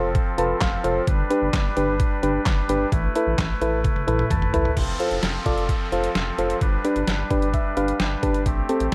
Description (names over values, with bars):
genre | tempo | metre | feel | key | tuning
synth-pop | 130 BPM | 4/4 | straight | unclear | A4 = 443 Hz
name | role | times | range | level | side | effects
soft electric-piano-like synth keys | accompaniment | 0.0-8.9 s | C4 to A5 | -26 LUFS | equal | chorus
chamber organ, soft reed | sustained chords | 0.0-8.9 s | F3 to B4 | -31 LUFS | equal | none
rubbery square bass | bass | 0.0-8.9 s | F1 to A1 | -30 LUFS | equal | none
detuned 8-bit digital drum machine | drums | 0.1-8.9 s | crash cymbal, handclaps, hi-hat, kick drum, snare drum, toms | -26 LUFS | equal | none
downlifter | sound effects | 4.8-8.5 s | none | -40 LUFS | equal | none
room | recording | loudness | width
light reverb | none | -22 LUFS | mono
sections
0.0-4.8 A section; 4.8-8.9 B section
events
synth keys fill 0.2-1.1, 3.8-4.8, 7.1-8.5; drum fill 3.8-4.8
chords
0.0 F; 1.1 G; 2.9 Asus2; 4.8 F; 6.6 G